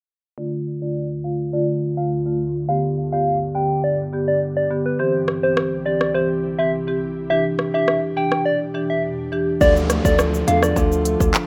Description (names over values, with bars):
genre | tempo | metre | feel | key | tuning
dancehall | 104 BPM | 4/4 | straight | D dorian | A4 = 440 Hz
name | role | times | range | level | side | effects
soft struck synth lead | melody | 0.4-10.7 s | B4 to G5 | -24 LUFS | equal | chorus, low-pass filter, digital delay
marimba with medium mallets | accompaniment | 0.4-11.4 s | D3 to A4 | -24 LUFS | equal | sidechain pumping, low-pass filter
ethereal airy pad | sustained chords | 1.0-11.5 s | C2 to A4 | -35 LUFS | equal | ensemble chorus, built-in reverb, tremolo, sidechain pumping, low-pass filter
afro-pop drum kit | drums | 5.3-11.5 s | handclaps, hi-hat, kick drum, rim click, shaker | -23 LUFS | equal | none
nylon-string guitar | arpeggios | 9.6-11.5 s | D3 to A3 | -30 LUFS | equal | none
hard-hitting 808-style bass | bass | 9.6-11.3 s | D2 to E2 | -24 LUFS | equal | none
downlifter | sound effects | 9.6-11.5 s | none | -34 LUFS | equal | none
room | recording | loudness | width
digital ambience | rough home demo mix | -20 LUFS | mono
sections
0.4-9.6 A section; 9.6-11.5 B section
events
filter sweep 0.4-9.6; break 8.5-9.6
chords
0.4 Dm; 2.7 G; 5.0 C; 7.3 Em7; 9.6 Dm